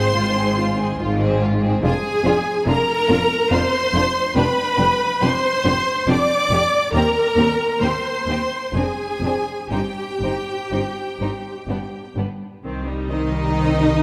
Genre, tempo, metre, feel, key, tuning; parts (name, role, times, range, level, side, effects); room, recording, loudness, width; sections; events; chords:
classical, slow romantic movement for string orchestra; 60-72 BPM; 3/4; rubato; C minor; A4 = 441 Hz
rich studio violin section; melody; 0.0-14.0 s; Eb5 to D6; -26 LUFS; equal
rich studio violin section; second line; 0.0-14.0 s; B3 to Ab4; -29 LUFS; equal
clear studio viola section; accompaniment; 0.0-14.0 s; Eb3 to D5; -24 LUFS; equal
clear studio double bass section; bass; 0.0-14.0 s; F1 to Eb2; -28 LUFS; equal
rich studio cello section; bass; 0.0-14.0 s; Eb2 to Eb3; -26 LUFS; equal
moderate concert hall reverb, RT60 2.4 s; -20 LUFS; mono
0.0-12.6 A section; 12.6-14.0 B section
0.0 Fm/Ab; 1.8 Dm7b5/F (rootless); 4.4 G7/F (rootless); 6.9 Cm/Eb; 8.7 Ddim/F (rootless); 9.7 N.C.; 12.6 Cm